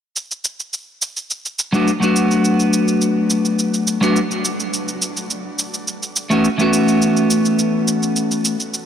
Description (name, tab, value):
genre	organic downtempo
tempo	105 BPM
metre	4/4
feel	straight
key	B minor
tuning	A4 = 441 Hz
part	shaker	drums	0.2-8.9 s	none	-22 LUFS	right 2 dB	none
part	clean electric guitar	accompaniment	1.7-8.6 s	E3 to F#4	-16 LUFS	equal	low-pass filter, digital delay, shimmer reverb
room	wet huge ambient reverb, RT60 4.6 s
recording	dense, heavily limited modern master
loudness	-16 LUFS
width	side -8 dB against mid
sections	0.2-8.9 A section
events	filter sweep on clean electric guitar 0.2-8.9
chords	0.2 Bm7; 4.7 A6